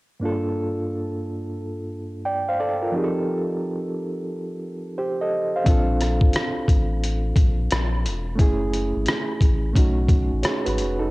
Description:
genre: lo-fi hip hop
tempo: 88 BPM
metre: 4/4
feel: swing 65% on 16ths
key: unclear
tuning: A4 = 440 Hz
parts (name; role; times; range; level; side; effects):
- bright reed electric piano; accompaniment; 0.2-11.1 s; G2 to G5; -24 LUFS; right 1 dB; fast tremolo, cassette tape
- warm sub bass; bass; 5.7-11.1 s; E1 to B1; -24 LUFS; equal; none
- lo-fi sampler-style drum kit; drums; 5.7-11.0 s; hi-hat, kick drum, rim click; -20 LUFS; equal; cassette tape
room: light reverb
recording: home recording on cassette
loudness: -20 LUFS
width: side -21 dB against mid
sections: 0.2-11.1 A section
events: none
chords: 0.2 Gm9; 2.9 F9; 5.7 Bbmaj7; 8.4 F#m7; 9.8 B7

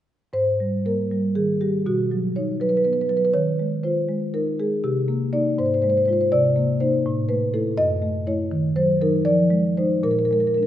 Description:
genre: classical, contemporary piece for solo marimba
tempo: 80 BPM (dotted quarters)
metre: 6/8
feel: rubato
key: unclear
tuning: A4 = 440 Hz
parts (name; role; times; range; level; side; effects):
- marimba with soft mallets; solo; 0.3-10.7 s; Gb2 to Eb5; -19 LUFS; equal; none
room: moderate scoring stage reverb, RT60 1.8 s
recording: nothing above 11.0 kHz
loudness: -19 LUFS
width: side -12 dB against mid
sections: 0.3-10.7 A section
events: none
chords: 0.3 Abmaj9; 1.9 B; 3.3 Eb9sus4; 4.8 Cm7; 5.6 Ab6; 6.3 Cm7; 7.0 A5; 7.8 Gbm7; 8.5 Ebm; 9.3 Fm7; 10.0 Bb7

